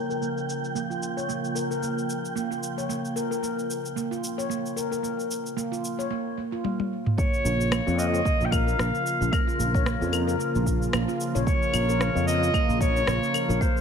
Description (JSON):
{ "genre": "organic downtempo", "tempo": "112 BPM", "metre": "4/4", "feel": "swing 56% on 16ths", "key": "Bb dorian", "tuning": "A4 = 439 Hz", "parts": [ { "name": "warm analog pad", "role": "sustained chords", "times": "0.0-13.8 s", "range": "Db3 to F4", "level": "-33 LUFS", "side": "right 1 dB", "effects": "chorus, sidechain pumping" }, { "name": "handpan", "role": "arpeggios", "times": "0.0-13.8 s", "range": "Bb3 to Db5", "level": "-30 LUFS", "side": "equal", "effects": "low-pass filter, ping-pong delay" }, { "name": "wind-like tuned noise texture", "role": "texture", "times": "0.0-6.1 s", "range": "G5", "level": "-37 LUFS", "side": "right 5 dB", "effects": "built-in reverb" }, { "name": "afro-pop drum kit", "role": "drums", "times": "0.1-13.8 s", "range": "cabasa, claves, rim click, toms", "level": "-32 LUFS", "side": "left 1 dB", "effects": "low-pass filter on perc, low-pass filter on snare, low-pass filter on toms" }, { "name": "warm clarinet", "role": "melody", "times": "7.2-13.8 s", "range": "Bb4 to G5", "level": "-28 LUFS", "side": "equal", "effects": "ping-pong delay" }, { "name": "electronic kick drum", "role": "drums", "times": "7.2-13.7 s", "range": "none", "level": "-25 LUFS", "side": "equal", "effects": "none" }, { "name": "sustaining fretless electric bass", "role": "bass", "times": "7.4-13.6 s", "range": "Bb1 to F2", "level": "-26 LUFS", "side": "left 1 dB", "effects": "ensemble chorus" } ], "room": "light reverb", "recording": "none", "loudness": "-24 LUFS", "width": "side -7 dB against mid", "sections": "0.0-7.2 A section; 7.2-13.8 B section", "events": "filter sweep on drum 0.0-7.2; filter sweep on handpan 0.0-7.2; drum fill 6.6-7.2", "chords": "0.0 Bbm", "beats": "0.22 | 0.75 1.29 1.82 2.36 | 2.90 3.43 3.97 4.50 | 5.04 5.57 6.11 6.65 | 7.18 7.72 8.25 8.79 | 9.32 9.86 10.40 10.93 | 11.47 12.00 12.54 13.07 | 13.61" }